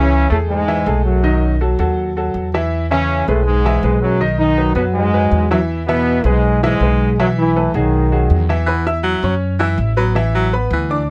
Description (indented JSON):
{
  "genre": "latin",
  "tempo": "161 BPM",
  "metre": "4/4",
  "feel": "straight",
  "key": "E major",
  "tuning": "A4 = 440 Hz",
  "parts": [
    { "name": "bright trombone section", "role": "melody", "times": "0.0-8.4 s", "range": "F#2 to E4", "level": "-19 LUFS", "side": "equal", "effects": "none" },
    { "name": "bright baby grand piano", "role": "accompaniment", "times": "0.0-11.1 s", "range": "D#3 to E6", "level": "-22 LUFS", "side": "equal", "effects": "none" },
    { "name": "upright bass", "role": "bass", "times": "0.0-11.1 s", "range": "A1 to F#2", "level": "-20 LUFS", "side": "equal", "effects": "none" },
    { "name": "clear baritone saxophone", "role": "second line", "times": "8.7-11.0 s", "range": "E3 to F#3", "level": "-22 LUFS", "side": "equal", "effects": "none" }
  ],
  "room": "light reverb",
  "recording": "close, detailed microphones",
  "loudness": "-16 LUFS",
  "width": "mono",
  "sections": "0.0-8.7 A section; 8.7-11.1 B section",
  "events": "none",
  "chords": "0.0 Amaj7/C#; 1.2 B7; 2.7 E6; 4.2 B; 5.7 E; 7.2 B7sus4; 7.9 B6; 8.7 E5; 9.4 F#m7; 10.2 Asus2"
}